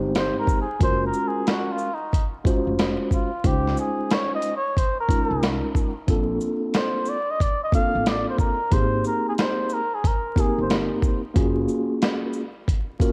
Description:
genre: hip hop, jazz-hop.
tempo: 91 BPM.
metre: 4/4.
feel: swing 66% on 16ths.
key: unclear.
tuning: A4 = 440 Hz.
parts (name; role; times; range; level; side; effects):
mellow tine electric piano; accompaniment; 0.0-13.1 s; Ab3 to C5; -28 LUFS; equal; cassette tape.
upright bass; bass; 0.0-11.6 s; F1 to Db2; -31 LUFS; equal; none.
dusty soul sampler-style drum kit; drums; 0.1-13.1 s; hi-hat, kick drum, shaker, snare drum; -25 LUFS; equal; cassette tape.
trumpet with cup mute; melody; 0.2-10.8 s; Eb4 to F5; -29 LUFS; equal; cassette tape, analog delay.
room: moderate spring reverb, RT60 2.8 s.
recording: home recording on cassette, vinyl crackle.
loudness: -23 LUFS.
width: mono.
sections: 0.0-13.1 A section.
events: muted trumpet solo 0.0-13.1.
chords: 0.0 Abmaj9; 0.8 Gbmaj9; 3.4 Dbmaj9; 6.1 Bbmaj9; 8.7 Abmaj9; 11.4 Gbmaj9.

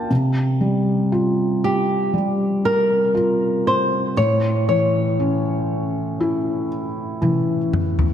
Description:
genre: pop ballad.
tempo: 59 BPM.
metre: 4/4.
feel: straight.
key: unclear.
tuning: A4 = 442 Hz.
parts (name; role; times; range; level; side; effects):
felt-muted upright piano; accompaniment; 0.0-8.1 s; A2 to A5; -19 LUFS; equal; none.
flamenco guitar; melody; 1.6-6.7 s; G4 to C#5; -20 LUFS; equal; diffuse ambient delay.
toms; drums; 7.2-8.1 s; none; -20 LUFS; left 1 dB; none.
room: wet plate reverb, RT60 2.8 s.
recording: dreamy mix soaked in reverb.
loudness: -17 LUFS.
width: side -9 dB against mid.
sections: 0.1-8.1 A section.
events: drum fill 7.2-8.1.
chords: 0.1 Csus4; 4.2 A.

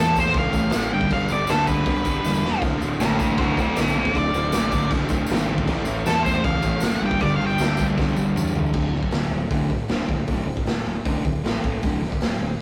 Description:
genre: garage rock duo or trio.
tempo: 157 BPM.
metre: 4/4.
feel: straight.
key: unclear.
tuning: A4 = 440 Hz.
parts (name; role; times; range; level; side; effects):
octave-fuzz lead guitar; melody; 0.0-7.8 s; F#4 to G5; -26 LUFS; equal; distortion.
fuzz guitar; riff; 0.0-12.6 s; D2 to A3; -27 LUFS; equal; distortion.
growling fingered electric bass; bass; 0.0-12.5 s; D1 to E2; -30 LUFS; equal; overdrive.
raw garage drum kit; drums; 0.1-12.3 s; crash cymbal, hi-hat, kick drum, snare drum, toms; -27 LUFS; equal; none.
tambourine; percussion; 0.1-8.7 s; none; -43 LUFS; equal; none.
room: light reverb.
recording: rough rehearsal-room recording, warm saturation.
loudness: -22 LUFS.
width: mono.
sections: 0.0-8.7 A section; 8.7-12.6 B section.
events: drum fill 2.2-2.6, 8.0-8.7.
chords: 0.0 A; 0.9 G; 2.6 D5; 5.7 A; 7.0 G5; 8.7 D5; 11.5 A5; 11.8 D5.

